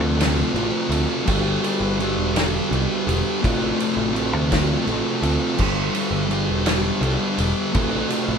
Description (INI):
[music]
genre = quiet-loud alternative rock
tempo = 56 BPM (dotted quarters)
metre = 6/8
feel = straight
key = unclear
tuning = A4 = 440 Hz
[part]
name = thick fuzz guitar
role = riff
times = 0.0-8.4 s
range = G3 to A4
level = -21 LUFS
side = equal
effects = distortion
[part]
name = picked electric bass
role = bass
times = 0.0-8.4 s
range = E1 to D2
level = -25 LUFS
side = equal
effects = none
[part]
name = loose indie drum kit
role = drums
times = 0.2-8.3 s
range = crash cymbal, kick drum, ride cymbal, snare drum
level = -25 LUFS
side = right 1 dB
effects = none
[sound]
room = light reverb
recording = band playing live in one room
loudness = -19 LUFS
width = side -6 dB against mid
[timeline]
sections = 0.0-8.4 A section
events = none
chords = 0.0 F; 1.3 Gsus2; 3.4 F/A; 5.6 Gsus2; 7.7 F/A